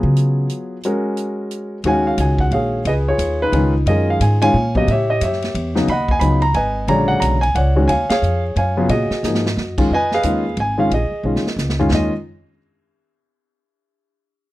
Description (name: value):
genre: jazz piano trio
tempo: 179 BPM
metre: 3/4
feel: swing 62% on 8ths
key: Eb minor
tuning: A4 = 439 Hz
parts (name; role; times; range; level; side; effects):
- warm grand piano; melody; 0.0-12.1 s; Db3 to Cb6; -18 LUFS; equal; none
- upright bass; bass; 0.0-12.1 s; Ab1 to Db3; -19 LUFS; equal; none
- vintage drum kit; drums; 0.2-12.0 s; crash cymbal, hi-hat, kick drum, ride cymbal, snare drum, toms; -24 LUFS; equal; none
room: little or no reverb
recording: dry, close 1970s-style studio recording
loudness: -15 LUFS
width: side -16 dB against mid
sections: 0.0-1.8 A section; 1.8-9.9 B section; 9.9-11.9 C section; 11.9-12.9 D section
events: upright bass solo 0.0-1.8; band accent 8.1; drum fill 9.2-9.6, 11.2-11.9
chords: 0.0 Gbmaj9; 1.8 Ebm11; 2.9 Db9; 3.9 Gbmaj9; 4.9 A13; 5.9 Abm7; 6.9 Bb7alt; 7.9 Ebm11; 9.9 Fm7b5; 10.9 Bb7sus4; 11.9 N.C.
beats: 0.16 0.49 | 0.83 1.17 1.50 | 1.84 2.18 2.51 | 2.85 3.19 3.52 | 3.86 4.20 4.53 | 4.87 5.20 5.54 | 5.88 6.21 6.55 | 6.88 7.22 7.55 | 7.89 8.22 8.56 | 8.89 9.23 9.56 | 9.90 10.24 10.57 | 10.91 11.24 11.58 | 11.91